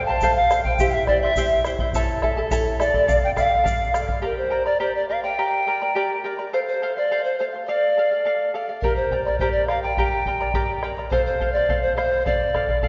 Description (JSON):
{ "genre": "andean folk, Andean ensemble", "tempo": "104 BPM", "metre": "2/4", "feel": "straight", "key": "unclear", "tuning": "A4 = 440 Hz", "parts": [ { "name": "bright polished pan flute", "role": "melody", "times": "0.0-12.9 s", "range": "Bb4 to A5", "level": "-24 LUFS", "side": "equal", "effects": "none" }, { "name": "large quena", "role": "second line", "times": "0.0-3.9 s", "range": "D5 to Bb5", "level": "-28 LUFS", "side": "equal", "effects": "none" }, { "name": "charango", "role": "accompaniment", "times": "0.0-12.9 s", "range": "E4 to Bb5", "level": "-28 LUFS", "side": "equal", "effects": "none" }, { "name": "bombo", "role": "percussion", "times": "0.2-4.2, 8.8-12.9 s", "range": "none", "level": "-28 LUFS", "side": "equal", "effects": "none" }, { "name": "egg shaker", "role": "percussion", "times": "0.2-4.1 s", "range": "none", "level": "-45 LUFS", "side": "equal", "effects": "none" } ], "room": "wet concert hall reverb, RT60 1.9 s", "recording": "recorded in a church or concert hall, nothing above 7.5 kHz", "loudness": "-22 LUFS", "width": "mono", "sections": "0.0-4.2 A section; 4.2-12.9 B section", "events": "none", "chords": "0.0 F; 0.8 C; 1.9 A; 3.1 Dm; 4.2 Gm; 6.5 F; 7.7 Dm; 8.8 Gm; 11.1 F; 12.3 Dm" }